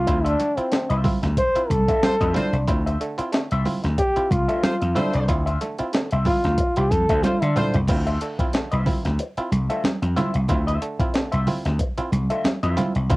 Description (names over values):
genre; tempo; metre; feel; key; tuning
funk; 92 BPM; 4/4; swing 56% on 16ths; D minor; A4 = 440 Hz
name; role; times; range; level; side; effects
warm trombone; melody; 0.0-7.8 s; C4 to C5; -22 LUFS; equal; none
vintage slap bass; bass; 0.0-13.2 s; C2 to D3; -22 LUFS; equal; none
electric guitar at the edge of break-up; accompaniment; 0.1-13.1 s; F4 to E5; -30 LUFS; left 2 dB; wah
muted clav; stabs; 0.1-13.2 s; D3 to F4; -29 LUFS; right 2 dB; none
breakbeat sampler-style drum kit; drums; 0.1-13.2 s; crash cymbal, hi-hat, kick drum, snare drum, toms; -25 LUFS; equal; none
congas; percussion; 0.1-13.2 s; none; -28 LUFS; right 2 dB; none
warm horn section; second line; 2.0-7.8 s; F4 to C5; -28 LUFS; left 1 dB; none
room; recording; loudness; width
light reverb; home recording on cassette; -19 LUFS; side -21 dB against mid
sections
0.0-7.9 A section; 7.9-13.2 B section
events
trombone solo 0.0-7.9; drum fill 7.2-7.9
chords
0.0 Dm9